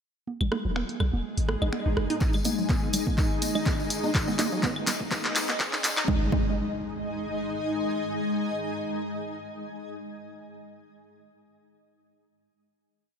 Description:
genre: minimal techno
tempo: 124 BPM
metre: 4/4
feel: swing 55% on 16ths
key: unclear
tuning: A4 = 440 Hz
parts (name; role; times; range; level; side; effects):
- electronic congas, claves and rim click; percussion; 0.3-6.1 s; none; -34 LUFS; right 3 dB; diffuse ambient delay
- granular cloud pad; texture; 1.3-10.1 s; G#3 to G#5; -31 LUFS; left 2 dB; built-in reverb, ensemble chorus, sidechain pumping
- swarming drone; texture; 1.0-6.1 s; G#3 to G#4; -42 LUFS; right 2 dB; none
- resonant blip pluck; riff; 0.4-6.5 s; F#3 to D#4; -34 LUFS; right 1 dB; wide subtle chorus, sidechain pumping, diffuse ambient delay
- punchy sub bass; bass; 0.4-2.1 s; D#1 to B1; -27 LUFS; equal; sidechain pumping
- filtered dub chord stab; stabs; 0.5-10.2 s; G#3 to D#5; -35 LUFS; right 3 dB; chorus, vintage 12-bit sampler grit, diffuse ambient delay
- punchy analog drum machine; drums; 0.8-6.1 s; finger snaps, handclaps, hi-hat; -30 LUFS; equal; low-pass filter on snare, low-pass filter on hats
- swell, riser and impact; sound effects; 1.4-10.0 s; none; -38 LUFS; equal; none
- electronic kick drum; drums; 2.2-6.5 s; none; -27 LUFS; equal; none
- tambourine; percussion; 2.2-6.1 s; none; -36 LUFS; left 4 dB; none
room: moderate plate reverb, RT60 2.8 s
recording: dreamy mix soaked in reverb, high-pass filter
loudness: -25 LUFS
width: side -7 dB against mid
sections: 0.3-2.2 intro; 2.2-6.1 build; 6.1-10.0 final chord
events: filter sweep on synth pluck 0.3-2.2, 2.2-6.1; swell 1.4-2.2; build-up 2.2-6.1; drum fill 2.2-6.1; filter sweep 2.2-6.1; riser 3.9-6.1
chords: 0.3 G#5

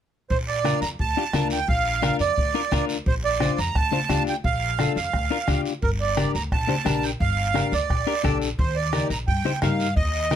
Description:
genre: latin, cumbia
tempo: 174 BPM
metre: 4/4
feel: straight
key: Bb major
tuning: A4 = 440 Hz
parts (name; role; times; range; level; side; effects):
- accordion; melody; 0.3-10.4 s; Bb4 to Bb5; -25 LUFS; right 5 dB; light tremolo tuning
- upright bass; bass; 0.3-10.4 s; G1 to G2; -28 LUFS; equal; none
- bombo; percussion; 0.3-10.4 s; none; -27 LUFS; equal; none
- guiro; percussion; 0.3-10.4 s; none; -35 LUFS; right 3 dB; none
- electric guitar at the edge of break-up; accompaniment; 0.6-10.4 s; D4 to C5; -26 LUFS; left 10 dB; none
- congas; percussion; 0.6-10.4 s; none; -28 LUFS; equal; none
room: light reverb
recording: close, detailed microphones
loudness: -21 LUFS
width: side -9 dB against mid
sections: 0.3-10.4 A section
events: none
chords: 0.3 Bb; 5.8 Gm; 8.6 Eb

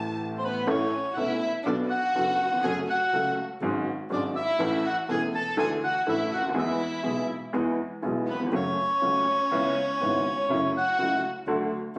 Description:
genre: tango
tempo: 122 BPM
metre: 4/4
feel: rubato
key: A major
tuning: A4 = 440 Hz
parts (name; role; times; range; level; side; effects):
- rich studio violin section; second line; 0.0-11.2 s; B3 to A5; -36 LUFS; equal; none
- clear upright piano; accompaniment; 0.0-12.0 s; E1 to A4; -31 LUFS; equal; none
- warm double bass; bass; 0.0-12.0 s; E1 to E2; -41 LUFS; equal; none
- bandoneon; melody; 0.4-11.2 s; B4 to A5; -29 LUFS; equal; none
room: moderate large studio reverb, RT60 0.8 s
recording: recorded on a phone in the room, studio reverb, compression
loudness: -27 LUFS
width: mono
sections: 0.7-12.0 A section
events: none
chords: 0.0 Am7; 0.7 A; 1.7 Bm7; 2.6 F#m; 3.6 C#sus4/G#; 4.6 A; 5.6 Dsus2; 6.6 E; 8.5 F#m; 9.5 C#m7; 10.5 F#m7; 11.5 D

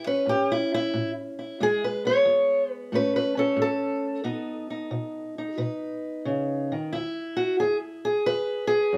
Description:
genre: acoustic country blues, solo or duo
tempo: 90 BPM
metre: 4/4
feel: swing 67% on 8ths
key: E major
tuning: A4 = 441 Hz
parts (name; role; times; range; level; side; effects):
- fingerpicked steel-string acoustic guitar; solo; 0.0-9.0 s; E2 to C#5; -26 LUFS; equal; none
room: moderate studio reverb, RT60 0.8 s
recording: none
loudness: -26 LUFS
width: mono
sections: 0.0-6.9 A section; 6.9-9.0 B section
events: steel-string acoustic guitar solo 0.0-6.9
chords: 0.0 A; 1.6 E; 2.9 A; 4.3 B; 6.9 E

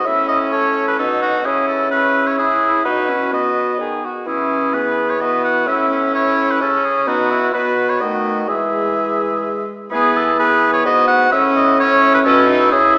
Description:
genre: classical, renaissance-style consort dance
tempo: 128 BPM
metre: 3/4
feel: straight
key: E major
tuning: A4 = 436 Hz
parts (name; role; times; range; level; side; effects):
- warm oboe; melody; 0.0-13.0 s; F#4 to F#5; -17 LUFS; equal; none
- mellow cor anglais; second line; 0.0-13.0 s; C#4 to A4; -20 LUFS; equal; none
- mellow bassoon; bass; 0.0-13.0 s; G#2 to E3; -20 LUFS; equal; none
- warm viola; accompaniment; 0.1-13.0 s; G#3 to E4; -21 LUFS; equal; none
room: wet concert hall reverb, RT60 2.4 s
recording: recorded in a church or concert hall, small speaker sound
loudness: -13 LUFS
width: side -36 dB against mid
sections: 0.0-9.9 A section; 9.9-13.0 A section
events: none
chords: 0.1 A; 1.4 C#m; 2.9 B5; 3.3 B; 4.3 E; 5.7 A; 7.1 Bsus4; 7.5 B; 8.5 E; 11.3 A

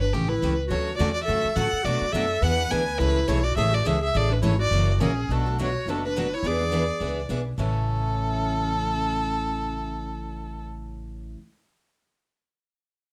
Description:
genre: acoustic string swing (jazz manouche)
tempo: 209 BPM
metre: 4/4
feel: swing 57% on 8ths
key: A major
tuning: A4 = 440 Hz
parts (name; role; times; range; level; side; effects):
- clear violin; melody; 0.0-10.6 s; G4 to G#5; -30 LUFS; equal; none
- warm clarinet; second line; 0.0-10.6 s; C#4 to B4; -34 LUFS; equal; none
- upright bass; bass; 0.0-11.3 s; F#1 to B2; -30 LUFS; equal; none
- picked steel-string acoustic guitar; accompaniment; 0.1-11.4 s; A2 to G#4; -33 LUFS; equal; none
- picked acoustic archtop guitar; accompaniment; 0.7-11.4 s; A2 to B4; -38 LUFS; equal; none
room: light reverb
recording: none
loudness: -25 LUFS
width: mono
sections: 0.0-5.3 A section; 5.3-7.6 B section; 7.6-9.9 C section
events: none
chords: 0.1 A7; 0.7 Dmaj7; 1.8 Bm7; 2.4 E7; 3.0 Amaj7; 4.7 F#7; 5.3 Bm7; 6.4 E7; 7.6 A

